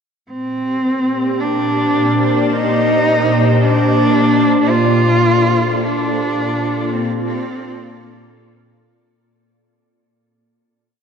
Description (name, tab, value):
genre	ambient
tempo	free time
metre	none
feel	none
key	Bb major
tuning	A4 = 439 Hz
part	dark cello	melody	0.3-8.9 s	Bb3 to F4	-16 LUFS	equal	ping-pong delay
part	evolving wavetable pad	sustained chords	1.2-9.2 s	Bb2 to D5	-17 LUFS	equal	ensemble chorus, built-in reverb, phaser
room	wet huge ambient reverb, RT60 8.6 s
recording	worn, warbling old tape, cassette tape, warbly pitch drift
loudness	-13 LUFS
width	side -7 dB against mid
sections	0.3-9.2 A section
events	fade-out 4.7-9.2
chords	0.3 Bb69; 4.7 Gm9/Bb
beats	free time